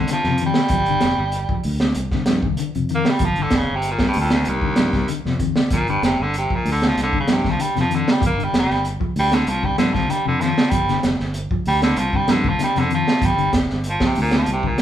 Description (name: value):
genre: afrobeat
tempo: 96 BPM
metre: 4/4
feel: straight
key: G minor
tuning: A4 = 441 Hz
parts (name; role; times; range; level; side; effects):
- raspy baritone saxophone; melody; 0.0-14.8 s; D2 to Bb3; -21 LUFS; right 1 dB; none
- mellow electric guitar; arpeggios; 0.0-14.8 s; C3 to G3; -25 LUFS; left 6 dB; none
- fingered electric bass; bass; 0.0-14.8 s; F1 to G2; -25 LUFS; equal; none
- crunchy breakbeat drum kit; drums; 0.1-14.8 s; hi-hat, kick drum, snare drum; -20 LUFS; right 1 dB; none
room: moderate large studio reverb, RT60 1.0 s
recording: band playing live in one room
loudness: -17 LUFS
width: side -10 dB against mid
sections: 0.0-14.8 A section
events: baritone saxophone solo 0.0-14.8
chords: 0.0 Cmadd9; 0.7 G5; 2.0 Cmadd9; 3.2 G5; 4.5 Cmadd9; 5.7 G5; 7.0 Cmadd9; 8.2 G5; 9.5 Cmadd9; 10.7 G5; 12.0 Cmadd9; 13.2 G5